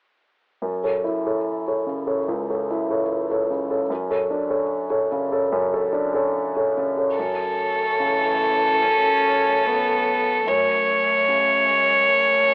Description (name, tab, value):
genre	neoclassical piano and strings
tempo	73 BPM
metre	4/4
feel	rubato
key	F# minor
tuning	A4 = 440 Hz
part	clear grand piano	accompaniment	0.6-12.5 s	C#2 to C#5	-26 LUFS	equal	none
part	rich violin	melody	7.2-12.5 s	A4 to C#5	-20 LUFS	equal	cassette tape
part	warm chamber string section	sustained chords	7.2-12.5 s	F#3 to C#5	-34 LUFS	equal	none
part	warm cello	second line	8.0-12.5 s	E3 to C#4	-31 LUFS	equal	none
room	moderate spring reverb, RT60 2.4 s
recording	home recording on cassette, telephone sound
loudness	-21 LUFS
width	mono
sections	0.6-7.2 A section; 7.2-12.5 B section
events	none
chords	0.6 F#m7 (rootless); 3.9 Dmaj7/F#; 7.2 F#m7; 10.5 F#madd9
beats	| 0.63 1.45 2.27 3.09 | 3.90 4.70 5.50 6.33 | 7.16 7.98 8.83 9.65 | 10.47 11.29 12.09